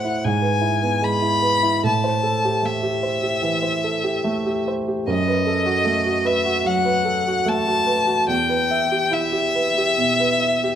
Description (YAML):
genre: classical, romantic duo for violin and grand piano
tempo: 69-78 BPM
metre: 4/4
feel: rubato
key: E minor from 5.1 s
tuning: A4 = 440 Hz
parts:
  - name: rich violin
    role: melody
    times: 0.0-10.8 s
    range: D#5 to B5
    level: -20 LUFS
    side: left 2 dB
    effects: none
  - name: warm baby grand piano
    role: accompaniment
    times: 0.0-10.8 s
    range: E2 to E5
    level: -21 LUFS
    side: right 2 dB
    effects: none
room: moderate concert hall reverb, RT60 2.1 s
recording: close, detailed microphones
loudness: -18 LUFS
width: side -9 dB against mid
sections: 0.0-10.8 A section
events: none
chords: 0.2 E/G#; 1.8 Am7; 5.1 B7/F#; 8.3 Em